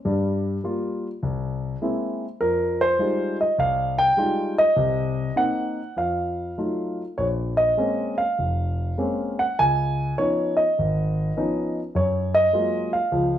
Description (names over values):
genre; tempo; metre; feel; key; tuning
solo jazz; 102 BPM; 4/4; swing 68% on 8ths, rubato; F minor, Bb minor from 7.2 s; A4 = 440 Hz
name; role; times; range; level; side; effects
dark concert grand piano; solo; 0.0-13.4 s; F1 to Ab5; -21 LUFS; equal; none
room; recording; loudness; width
moderate large studio reverb, RT60 0.9 s; none; -21 LUFS; side -10 dB against mid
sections
0.0-7.2 A section; 7.2-13.4 B section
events
none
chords
0.1 Gm7; 1.2 Caug7; 2.4 Fm9; 4.8 Cm7b5; 6.0 F7b9; 7.2 Bbm9; 9.6 Db9; 12.0 Gbmaj9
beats
| 0.05 0.65 1.23 1.82 | 2.41 3.00 3.58 4.17 | 4.76 5.36 5.96 6.58 | 7.19 7.79 8.39 8.99 | 9.59 10.19 10.78 11.37 | 11.96 12.54 13.12